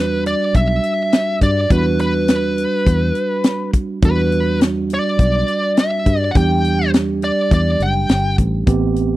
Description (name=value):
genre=straight-eighth soul blues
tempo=103 BPM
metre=4/4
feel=swing 53% on 16ths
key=E minor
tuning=A4 = 439 Hz
part: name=smooth overdriven lead guitar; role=melody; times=0.0-8.4 s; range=B4 to G5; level=-19 LUFS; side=left 1 dB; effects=none
part: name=mellow tine electric piano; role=accompaniment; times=0.0-9.2 s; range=G3 to G4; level=-21 LUFS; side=right 4 dB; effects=none
part: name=fingered electric bass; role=bass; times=0.0-9.2 s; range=F#1 to G2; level=-18 LUFS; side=equal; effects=none
part: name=tight funk drum kit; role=drums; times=0.3-9.1 s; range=hi-hat, kick drum, snare drum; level=-15 LUFS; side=left 1 dB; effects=none
room=studio ambience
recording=dry, close 1970s-style studio recording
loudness=-14 LUFS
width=side -16 dB against mid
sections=0.0-9.2 A section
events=none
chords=0.0 Em7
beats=0.55 1.13 | 1.71 2.29 2.87 3.45 | 4.03 4.61 5.19 5.77 | 6.35 6.93 7.51 8.09 | 8.67